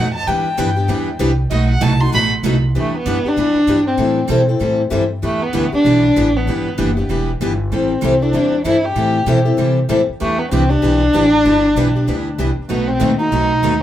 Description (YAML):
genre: acoustic string swing (jazz manouche)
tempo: 193 BPM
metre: 4/4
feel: swing 60% on 8ths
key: E minor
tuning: A4 = 440 Hz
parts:
  - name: warm violin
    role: melody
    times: 0.0-13.8 s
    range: A3 to C6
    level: -17 LUFS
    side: equal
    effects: plate reverb, tape echo
  - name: picked steel-string acoustic guitar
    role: accompaniment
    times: 0.0-13.7 s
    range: B2 to A4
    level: -20 LUFS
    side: left 3 dB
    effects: none
  - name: picked steel-string acoustic guitar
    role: accompaniment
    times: 0.0-13.7 s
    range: B2 to B4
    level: -24 LUFS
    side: right 4 dB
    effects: none
  - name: upright bass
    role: bass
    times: 0.0-13.8 s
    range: E1 to C3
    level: -19 LUFS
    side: right 1 dB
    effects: none
room: wet small room reverb, RT60 0.5 s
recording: heard from further back in the room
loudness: -13 LUFS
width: side -12 dB against mid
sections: 0.0-2.7 A section; 2.7-13.8 B section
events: violin solo 0.0-2.7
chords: 0.3 Em7; 1.5 B7b9; 2.7 Em7; 4.0 Am7; 5.2 Em7; 7.7 Am7; 10.2 Em7; 12.7 B7b9